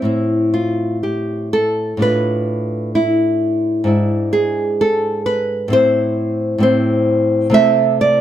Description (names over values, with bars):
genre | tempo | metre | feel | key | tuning
romantic piece for solo classical guitar | 65 BPM | 2/4 | rubato | A minor | A4 = 439 Hz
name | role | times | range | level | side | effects
nylon-string guitar | solo | 0.0-8.2 s | G#2 to E5 | -14 LUFS | equal | none
room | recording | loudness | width
moderate studio reverb, RT60 0.5 s | none | -14 LUFS | side -11 dB against mid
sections
0.1-8.2 A section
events
none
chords
0.1 Am; 2.0 Bm7b5/A; 3.9 E7/G#; 5.7 Am; 7.6 Am/C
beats
| 0.07 1.05 | 2.01 2.96 | 3.89 4.82 | 5.74 6.65 | 7.55